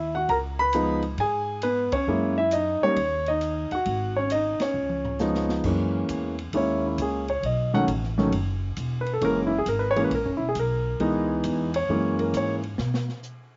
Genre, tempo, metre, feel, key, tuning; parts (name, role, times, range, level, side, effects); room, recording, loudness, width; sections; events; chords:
jazz piano trio; 134 BPM; 4/4; swing 67% on 8ths; F# mixolydian; A4 = 438 Hz
warm grand piano; melody; 0.0-12.6 s; D#3 to B5; -26 LUFS; equal
upright bass; bass; 0.0-13.1 s; E1 to B2; -33 LUFS; equal
open jazz drum kit; drums; 0.3-13.4 s; crash cymbal, hi-hat, kick drum, ride cymbal, snare drum, toms; -40 LUFS; equal
little or no reverb; recorded outdoors, with no room sound, nothing above 7.6 kHz; -25 LUFS; mono
0.0-5.6 A section; 5.6-13.6 B section
band accent 1.9, 4.5; drum fill 4.8-5.6; grand piano solo 5.6-13.6
0.3 C#7(no3); 2.1 F#9; 3.0 D#m7; 3.9 G#5; 4.8 C#9; 5.6 F#9; 7.4 B7; 9.2 F#9; 11.0 C#m7; 11.9 F#9; 12.8 N.C.